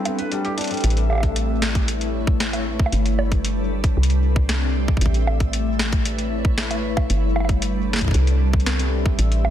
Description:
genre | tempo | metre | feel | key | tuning
IDM | 115 BPM | 4/4 | straight | unclear | A4 = 440 Hz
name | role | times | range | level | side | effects
glassy FM pad | sustained chords | 0.0-9.5 s | G3 to E5 | -25 LUFS | left 2 dB | ensemble chorus, built-in reverb, sidechain pumping
felt-muted upright piano | arpeggios | 0.0-0.8 s | G3 to B4 | -30 LUFS | equal | ping-pong delay
flickering grainy texture | texture | 0.0-0.8 s | A4 | -38 LUFS | left 1 dB | none
electro analog drum machine | drums | 0.1-9.5 s | bongos, hi-hat, snare drum | -26 LUFS | right 1 dB | tape echo
woody FM bass | bass | 0.8-9.5 s | G1 to C2 | -21 LUFS | equal | tube saturation
electronic kick drum | drums | 1.2-9.2 s | none | -20 LUFS | equal | none
room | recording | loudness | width
light reverb, digital ambience | dense, heavily limited modern master | -18 LUFS | side -11 dB against mid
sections
0.8-9.5 A section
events
none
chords
0.0 Cmaj9; 0.8 Aadd9; 2.9 Gadd9; 4.0 Cmaj9; 5.0 Aadd9; 7.1 Gadd9; 8.1 Cmaj9

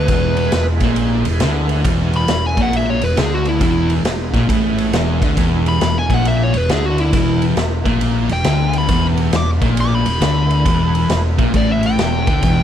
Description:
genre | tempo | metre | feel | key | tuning
blues rock power trio and southern rock | 136 BPM | 4/4 | swing 65% on 8ths | E major | A4 = 440 Hz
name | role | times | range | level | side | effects
fuzz lead guitar | melody | 0.0-12.6 s | E4 to D6 | -20 LUFS | equal | distortion, slapback echo
overdriven tonewheel organ | sustained chords | 0.0-12.6 s | G#3 to C5 | -32 LUFS | right 5 dB | none
fuzz guitar | riff | 0.0-12.6 s | E2 to D3 | -18 LUFS | left 1 dB | distortion
overdriven fingered electric bass | bass | 0.0-12.6 s | E1 to D2 | -20 LUFS | equal | none
raw garage drum kit | drums | 0.1-12.6 s | kick drum, ride cymbal, snare drum | -20 LUFS | equal | none
room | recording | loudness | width
little or no reverb | none | -14 LUFS | side -10 dB against mid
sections
0.0-12.6 A section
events
none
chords
0.0 E

